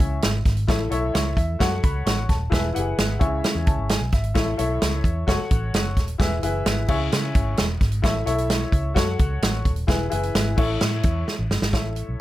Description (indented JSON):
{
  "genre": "uptempo 1960s-style soul",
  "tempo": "130 BPM",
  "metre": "4/4",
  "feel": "straight",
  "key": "A major",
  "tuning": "A4 = 440 Hz",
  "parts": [
    { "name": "clear upright piano", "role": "accompaniment", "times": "0.0-12.2 s", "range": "A2 to C#6", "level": "-26 LUFS", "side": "left 3 dB", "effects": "none" },
    { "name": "vintage muted fingered electric bass", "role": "bass", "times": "0.0-12.2 s", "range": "D#1 to C#3", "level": "-25 LUFS", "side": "equal", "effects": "none" },
    { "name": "natural country drum kit", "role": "drums", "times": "0.0-12.1 s", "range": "crash cymbal, hi-hat, kick drum, snare drum", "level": "-22 LUFS", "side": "right 1 dB", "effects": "none" }
  ],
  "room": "light reverb",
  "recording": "none",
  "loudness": "-20 LUFS",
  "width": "side -15 dB against mid",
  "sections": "0.0-11.7 A section",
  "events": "upright piano fill 3.4-4.4; drum fill 11.3-11.7",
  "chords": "0.0 C#m; 0.7 A; 1.6 F#m; 2.5 E; 3.2 C#m; 4.4 A; 5.3 F#m; 6.2 E; 6.9 C#m; 8.0 A; 9.0 F#m; 9.9 E; 10.6 A"
}